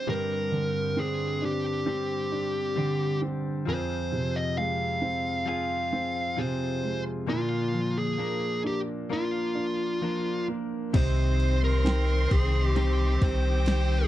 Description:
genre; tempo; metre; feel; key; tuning
pop ballad; 66 BPM; 4/4; straight; C minor; A4 = 440 Hz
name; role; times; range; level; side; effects
fuzz lead guitar; melody; 0.0-14.1 s; F4 to F5; -30 LUFS; equal; distortion, slapback echo
clear grand piano; accompaniment; 0.0-14.1 s; F2 to G5; -31 LUFS; right 2 dB; none
direct-recorded clean electric guitar; arpeggios; 0.0-14.1 s; G2 to Bb4; -35 LUFS; left 10 dB; none
warm symphonic violin section; second line; 10.9-14.1 s; G4 to C6; -36 LUFS; right 1 dB; none
clear studio string section; sustained chords; 10.9-14.1 s; Eb3 to C4; -36 LUFS; right 1 dB; none
warm sub bass; bass; 10.9-14.1 s; C2; -24 LUFS; equal; none
smooth R&B drum kit; drums; 10.9-13.9 s; crash cymbal, kick drum, ride cymbal, snare drum; -25 LUFS; equal; none
room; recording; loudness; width
little or no reverb; dry, close 1970s-style studio recording; -25 LUFS; side -14 dB against mid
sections
0.0-10.9 A section; 10.9-14.1 B section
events
none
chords
0.1 Gsus4; 3.7 Fm; 7.3 Bb; 10.9 Cm

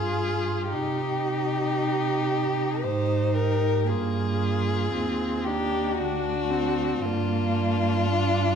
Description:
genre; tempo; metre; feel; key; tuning
classical, slow romantic movement for string quartet; 57 BPM; 3/4; rubato; C minor; A4 = 439 Hz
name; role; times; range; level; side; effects
warm violin; melody; 0.0-8.6 s; D4 to G4; -32 LUFS; left 10 dB; none
warm violin; second line; 0.0-8.6 s; F4 to C5; -27 LUFS; left 3 dB; none
warm viola; accompaniment; 0.0-8.6 s; Bb3 to F4; -30 LUFS; right 2 dB; none
warm cello; bass; 0.0-8.6 s; D2 to C3; -28 LUFS; right 5 dB; none
room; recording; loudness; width
moderate scoring stage reverb, RT60 1.5 s; dark, warm production; -23 LUFS; side -7 dB against mid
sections
0.0-8.6 A section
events
none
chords
0.0 Fmadd9/G; 0.7 Cm; 3.9 Gm; 6.0 D7; 7.0 Gm

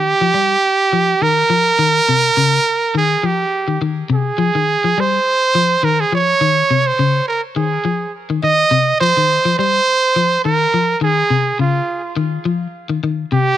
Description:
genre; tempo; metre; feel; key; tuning
afrobeat; 104 BPM; 4/4; swing 54% on 16ths; F minor; A4 = 438 Hz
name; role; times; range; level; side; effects
bright trumpet; melody; 0.0-13.6 s; F4 to Eb5; -14 LUFS; right 3 dB; tape echo
electric guitar at the edge of break-up; arpeggios; 0.0-13.5 s; C3 to G3; -18 LUFS; left 5 dB; none
room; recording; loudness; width
light reverb; none; -13 LUFS; side -12 dB against mid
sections
0.0-13.6 A section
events
none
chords
0.0 Fsus2; 1.8 N.C.; 4.1 Fm9; 6.4 Dbsus2; 8.7 Fsus2; 11.0 Dbadd9 (rootless)

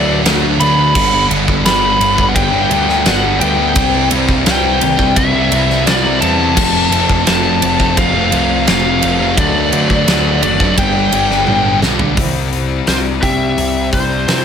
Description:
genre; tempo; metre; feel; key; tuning
quiet-loud alternative rock; 86 BPM; 4/4; straight; unclear; A4 = 441 Hz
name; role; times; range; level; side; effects
biting lead guitar; melody; 0.0-14.4 s; C5 to B5; -16 LUFS; left 2 dB; overdrive, plate reverb, tape echo
fuzz guitar; riff; 0.0-14.4 s; F2 to E4; -18 LUFS; left 11 dB; distortion
thick fuzz guitar; riff; 0.0-12.2 s; F2 to E4; -18 LUFS; right 11 dB; distortion
growling picked electric bass; bass; 0.0-14.4 s; F1 to C3; -20 LUFS; equal; overdrive
huge arena drum kit; drums; 0.3-14.4 s; crash cymbal, hi-hat, kick drum, ride cymbal, snare drum, toms; -16 LUFS; right 1 dB; none
picked old ladder-braced acoustic guitar; arpeggios; 12.2-14.4 s; C3 to G4; -23 LUFS; right 5 dB; plate reverb
room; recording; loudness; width
light reverb; none; -11 LUFS; side -7 dB against mid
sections
0.0-12.2 A section; 12.2-14.4 B section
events
drum fill 11.5-12.2; lead electric guitar solo 12.2-14.4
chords
0.0 D; 0.9 G; 3.8 C; 6.6 F; 9.4 D; 10.8 G; 12.2 C

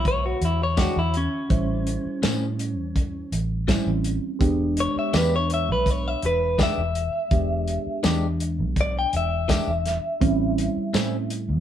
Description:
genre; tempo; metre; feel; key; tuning
straight-eighth soul blues; 83 BPM; 4/4; straight; unclear; A4 = 440 Hz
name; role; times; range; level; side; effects
direct-recorded clean electric guitar; melody; 0.0-11.3 s; C#4 to G5; -26 LUFS; left 1 dB; spring reverb
reed electric piano; accompaniment; 0.0-11.6 s; D3 to B#4; -28 LUFS; right 3 dB; phaser
vintage muted fingered electric bass; bass; 0.0-11.6 s; E1 to A2; -26 LUFS; equal; none
warm soul drum kit; drums; 0.1-11.5 s; hi-hat, kick drum, snare drum, tambourine; -24 LUFS; equal; none
direct-recorded clean electric guitar; stabs; 0.8-11.2 s; A2 to G4; -28 LUFS; left 4 dB; none
room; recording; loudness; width
moderate studio reverb, RT60 0.6 s; band playing live in one room; -21 LUFS; side -10 dB against mid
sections
0.0-11.6 A section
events
clean electric guitar solo 0.0-11.6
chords
0.0 E7#9; 1.5 A7#9; 4.4 E7#9; 10.2 A7#9

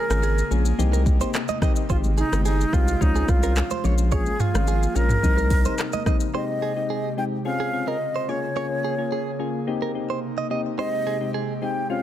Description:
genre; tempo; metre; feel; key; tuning
afrobeats; 108 BPM; 4/4; straight; unclear; A4 = 442 Hz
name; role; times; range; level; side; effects
breathy mellow concert flute; melody; 0.0-12.0 s; Eb4 to G5; -27 LUFS; equal; ping-pong delay
airy breathy pad; sustained chords; 0.0-12.0 s; C3 to Ab4; -32 LUFS; right 1 dB; chorus
direct-recorded clean electric guitar; riff; 0.0-11.5 s; Ab4 to Eb5; -31 LUFS; right 9 dB; ping-pong delay
soft electric-piano-like synth keys; accompaniment; 0.1-12.0 s; G3 to Ab4; -29 LUFS; left 7 dB; chorus
saturated sub bass; bass; 0.1-5.7 s; G1 to Db2; -21 LUFS; equal; none
afro-pop drum kit; drums; 0.1-6.3 s; handclaps, hi-hat, kick drum, rim click, shaker, toms; -24 LUFS; equal; soft clipping on snare
congas; percussion; 0.1-6.2 s; none; -34 LUFS; right 3 dB; none
room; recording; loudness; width
little or no reverb; dense, heavily limited modern master; -20 LUFS; side -12 dB against mid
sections
0.0-6.3 A section; 6.3-12.0 B section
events
none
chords
0.0 Bbm7; 0.8 Cm7; 1.9 Abmaj7; 3.0 Dbmaj7; 3.8 Bbm7; 5.2 Cm7; 6.3 Abmaj7; 7.5 Dbmaj7; 8.3 Bbm7; 9.7 Cm7; 10.8 Abmaj7

